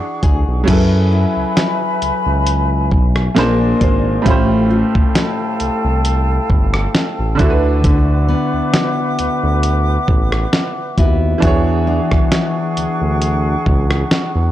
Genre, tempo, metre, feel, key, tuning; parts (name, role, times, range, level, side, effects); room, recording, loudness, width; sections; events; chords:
contemporary R&B; 67 BPM; 4/4; swing 54% on 16ths; F# minor; A4 = 441 Hz
bright baby grand piano; accompaniment; 0.0-14.5 s; A2 to C#5; -22 LUFS; right 4 dB
mellow hollow small flute group; sustained chords; 0.0-14.5 s; D4 to D6; -22 LUFS; equal; sidechain pumping
nylon-string guitar; arpeggios; 0.0-14.5 s; D3 to C#5; -20 LUFS; left 3 dB; tape echo
smooth synth bass; bass; 0.2-14.5 s; G1 to F#2; -17 LUFS; equal
dusty soul sampler-style drum kit; drums; 0.2-14.3 s; crash cymbal, hi-hat, kick drum, rim click, snare drum; -16 LUFS; equal
studio reverb; dry, gritty hardware recording, cassette tape; -13 LUFS; side -13 dB against mid
0.7-14.5 A section
0.0 E13; 0.7 F#m11; 3.4 A#9; 4.3 A7alt; 7.4 D69; 11.4 E13